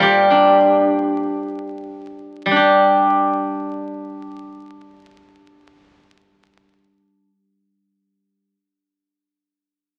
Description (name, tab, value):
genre	chinese traditional, Chinese solo plucked strings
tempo	free time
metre	none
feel	none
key	G yu mode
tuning	A4 = 442 Hz
part	steel-string zither	solo	0.0-8.5 s	Bb2 to C5	-18 LUFS	equal	none
room	moderate studio ambience, RT60 0.5 s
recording	very old 78 rpm record, vinyl crackle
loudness	-16 LUFS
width	mono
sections	0.0-2.6 A section; 2.6-7.9 B section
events	slowing down 0.0-2.6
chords	none